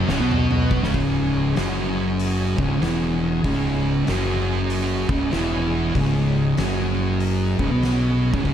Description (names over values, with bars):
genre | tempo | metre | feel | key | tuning
stoner and doom metal | 96 BPM | 4/4 | swing 63% on 8ths | C# minor | A4 = 441 Hz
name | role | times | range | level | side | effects
bright tonewheel organ | sustained chords | 0.0-8.5 s | C#4 to D#5 | -34 LUFS | left 1 dB | slow rotary speaker, chorus vibrato
heavy high-gain guitar | riff | 0.0-0.9 s | C#2 to B3 | -28 LUFS | left 1 dB | distortion
thick fuzz guitar | riff | 0.0-8.5 s | C#2 to B3 | -24 LUFS | left 7 dB | distortion
thick fuzz guitar | riff | 0.0-8.5 s | C#2 to B3 | -23 LUFS | right 7 dB | distortion
fuzz fingered electric bass | bass | 0.0-8.5 s | C#1 to B1 | -26 LUFS | equal | overdrive
oversized low-tuned drum kit | drums | 0.1-8.5 s | hi-hat, kick drum, snare drum, toms | -27 LUFS | left 1 dB | none
room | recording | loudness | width
light reverb | none | -19 LUFS | side -9 dB against mid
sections
0.9-8.5 A section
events
drum fill 0.0-0.9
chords
0.0 N.C.; 0.9 C#m